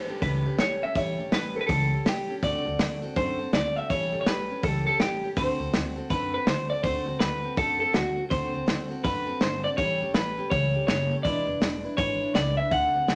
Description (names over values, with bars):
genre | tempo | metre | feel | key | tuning
rockabilly | 163 BPM | 4/4 | swing 62% on 8ths | A mixolydian | A4 = 440 Hz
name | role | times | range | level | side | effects
electric guitar through a small old amp | melody | 0.0-13.2 s | F#4 to F#5 | -30 LUFS | equal | none
picked steel-string acoustic guitar | accompaniment | 0.0-13.2 s | A2 to B4 | -37 LUFS | equal | none
upright bass | bass | 0.0-13.2 s | E1 to F#2 | -35 LUFS | equal | none
vintage drum kit | drums | 0.2-13.2 s | hi-hat, kick drum, snare drum | -30 LUFS | equal | none
room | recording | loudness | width
moderate club reverb, RT60 0.8 s | none | -26 LUFS | mono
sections
0.0-13.2 A section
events
none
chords
0.0 A7; 2.4 D7; 3.9 A7; 5.4 D7; 9.8 A7; 11.2 E7